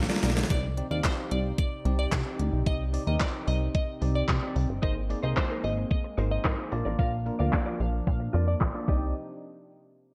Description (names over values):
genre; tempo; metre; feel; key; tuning
dance-pop; 111 BPM; 4/4; straight; C minor; A4 = 440 Hz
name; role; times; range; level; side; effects
bell-like tine electric piano; accompaniment; 0.0-9.1 s; Bb3 to F5; -39 LUFS; equal; none
warm analog pad; sustained chords; 0.0-9.1 s; C3 to D5; -42 LUFS; equal; none
plucky analog bass; bass; 0.0-9.1 s; G1 to C3; -30 LUFS; equal; sidechain pumping
pop drum kit; drums; 0.0-9.0 s; crash cymbal, handclaps, hi-hat, kick drum, shaker, snare drum; -30 LUFS; equal; overdrive, gated reverb
unison pluck; arpeggios; 0.1-0.5 s; D3 to D5; -45 LUFS; equal; none
direct-recorded clean electric guitar; riff; 0.1-0.4, 4.8-9.1 s; Eb4 to D5; -40 LUFS; equal; ensemble chorus
glassy wavetable pluck; melody; 0.5-9.1 s; C5 to F5; -39 LUFS; equal; chorus, sidechain pumping
room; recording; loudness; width
light reverb; bright 1980s-style digital production, low-pass filter; -28 LUFS; mono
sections
0.5-9.2 A section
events
drum fill 0.0-0.5; tine electric piano fill 0.0-0.5; filter sweep 0.5-9.2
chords
0.0 Bb; 0.5 Cmadd9; 4.8 Abadd9; 6.7 Bb; 8.9 Cmadd9; 9.2 N.C.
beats
| 0.50 1.04 1.58 2.12 | 2.67 3.21 3.75 4.29 | 4.83 5.37 5.91 6.45 | 6.99 7.53 8.07 8.61